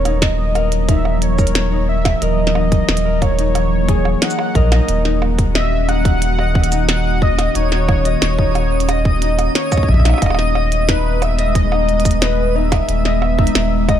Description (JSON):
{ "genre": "IDM", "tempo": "90 BPM", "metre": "4/4", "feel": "straight", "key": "Eb phrygian", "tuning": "A4 = 439 Hz", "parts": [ { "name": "warm velvety synth lead", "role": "melody", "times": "0.0-14.0 s", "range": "Cb5 to Gb5", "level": "-21 LUFS", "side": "equal", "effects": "chorus, digital delay" }, { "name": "glassy FM pad", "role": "sustained chords", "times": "0.0-14.0 s", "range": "Eb3 to Gb4", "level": "-22 LUFS", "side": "equal", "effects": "ensemble chorus, built-in reverb" }, { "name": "Celtic harp", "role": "arpeggios", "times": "0.0-14.0 s", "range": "Eb4 to Eb5", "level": "-24 LUFS", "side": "left 8 dB", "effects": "digital delay" }, { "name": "warm sub bass", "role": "bass", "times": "0.0-14.0 s", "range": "Eb1 to Bb1", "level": "-17 LUFS", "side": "equal", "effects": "tube saturation" }, { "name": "glitchy drum kit", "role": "drums", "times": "0.1-14.0 s", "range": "hi-hat, percussion blips, shaker, snare drum", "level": "-22 LUFS", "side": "right 2 dB", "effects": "studio reverb" }, { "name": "electronic kick drum", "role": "drums", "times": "0.2-14.0 s", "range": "none", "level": "-18 LUFS", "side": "equal", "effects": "studio reverb" }, { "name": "twinkling granular texture", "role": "texture", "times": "5.8-14.0 s", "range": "Eb6", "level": "-31 LUFS", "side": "right 2 dB", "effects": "built-in reverb" } ], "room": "digital ambience", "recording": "dark, warm production", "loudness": "-13 LUFS", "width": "side -10 dB against mid", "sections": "0.0-14.0 A section", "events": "none", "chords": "0.0 Gb7/Eb; 4.9 Ebm7; 10.2 Abm/Eb" }